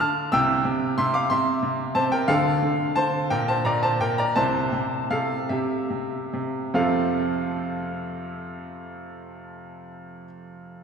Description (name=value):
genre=classical-period piano sonatina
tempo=46-62 BPM (dotted quarters)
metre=6/8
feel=rubato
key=F major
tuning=A4 = 441 Hz
part: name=bright grand piano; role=solo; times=0.0-10.8 s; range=C2 to F6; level=-22 LUFS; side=equal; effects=none
room=wet cathedral reverb, RT60 4.2 s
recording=recorded in a church or concert hall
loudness=-21 LUFS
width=side -6 dB against mid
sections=0.0-6.8 A section; 6.8-10.8 B section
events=slowing down 1.3-6.8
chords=0.3 C; 2.3 Dm; 3.3 Bbmaj13; 4.4 F/C; 5.5 C; 6.8 F